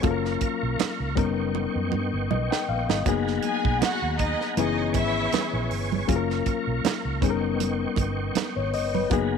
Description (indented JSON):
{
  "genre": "lush 1970s-style soul",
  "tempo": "79 BPM",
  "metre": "4/4",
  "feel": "swing 54% on 16ths",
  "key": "unclear",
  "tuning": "A4 = 436 Hz",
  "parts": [
    { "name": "reed electric piano", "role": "accompaniment", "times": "0.0-9.4 s", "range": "E3 to G5", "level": "-27 LUFS", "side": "left 10 dB", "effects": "none" },
    { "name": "tonewheel organ", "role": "sustained chords", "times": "0.0-9.4 s", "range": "B3 to C#6", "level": "-32 LUFS", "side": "right 2 dB", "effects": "slow rotary speaker, overdrive, chorus vibrato" },
    { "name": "vintage muted fingered electric bass", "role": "bass", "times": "0.0-9.4 s", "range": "F#1 to G2", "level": "-30 LUFS", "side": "right 2 dB", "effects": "none" },
    { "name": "tight funk drum kit", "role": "drums", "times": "0.0-9.3 s", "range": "hi-hat, kick drum, snare drum", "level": "-28 LUFS", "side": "right 5 dB", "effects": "none" },
    { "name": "congas", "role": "percussion", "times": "0.0-9.3 s", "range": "none", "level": "-31 LUFS", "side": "right 12 dB", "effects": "none" },
    { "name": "rich studio violin section", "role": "second line", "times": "3.4-5.7 s", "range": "D#4 to G#5", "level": "-28 LUFS", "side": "equal", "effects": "none" }
  ],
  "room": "light reverb, small room ambience",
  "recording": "1960s-style stereo with parts hard left and right",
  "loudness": "-23 LUFS",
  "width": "side -6 dB against mid",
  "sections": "0.0-9.4 A section",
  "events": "drum fill 1.5-3.1",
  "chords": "0.0 F#maj7; 1.2 D#7b13/F#; 3.1 G#m9/F#; 4.6 C#m9/F#; 6.1 F#maj7; 7.2 D#7b13/F#"
}